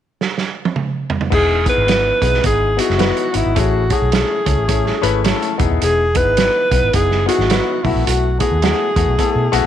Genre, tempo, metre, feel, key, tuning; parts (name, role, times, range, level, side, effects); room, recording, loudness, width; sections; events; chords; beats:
uptempo 1960s-style soul; 107 BPM; 4/4; swing 60% on 8ths; E major; A4 = 440 Hz
vintage drum kit; drums; 0.2-9.6 s; crash cymbal, hi-hat, kick drum, snare drum, toms; -19 LUFS; right 4 dB
breathy alto saxophone; melody; 1.3-9.7 s; E4 to B4; -18 LUFS; right 1 dB
warm grand piano; accompaniment; 1.3-9.7 s; A3 to B4; -20 LUFS; left 10 dB
vintage muted fingered electric bass; bass; 1.3-9.7 s; D#1 to B2; -19 LUFS; equal
light reverb, studio reverb; 1960s-style stereo; -14 LUFS; side -10 dB against mid
0.0-1.3 A section; 1.3-9.7 B section
drum fill 0.2-1.3
0.0 N.C.; 1.3 Emaj7; 3.6 Amaj7; 5.5 Emaj7; 7.8 B7sus4
0.20 0.76 | 1.32 1.89 2.45 3.01 | 3.57 4.13 4.70 5.26 | 5.82 6.38 6.94 7.50 | 8.06 8.62 9.19